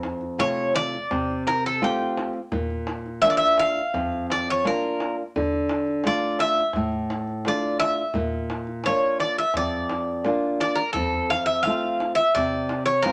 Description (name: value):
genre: greek folk, Greek bouzouki band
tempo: 85 BPM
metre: 4/4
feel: straight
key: unclear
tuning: A4 = 437 Hz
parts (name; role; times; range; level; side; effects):
- nylon-string guitar; accompaniment; 0.0-13.1 s; F2 to F4; -29 LUFS; equal; none
- darbuka; percussion; 0.0-13.1 s; none; -36 LUFS; equal; none
- Greek bouzouki; melody; 0.4-13.1 s; G4 to F5; -25 LUFS; equal; none
room: moderate studio reverb, RT60 0.7 s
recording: none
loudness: -24 LUFS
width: mono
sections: 0.0-13.1 A section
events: none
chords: 0.0 F; 2.5 Bb; 5.3 Dm; 8.2 Bb; 11.0 F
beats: 0.40 1.11 1.82 | 2.52 3.23 3.94 4.64 | 5.35 6.05 6.76 7.46 | 8.16 8.86 9.56 10.25 | 10.95 11.65 12.34 13.03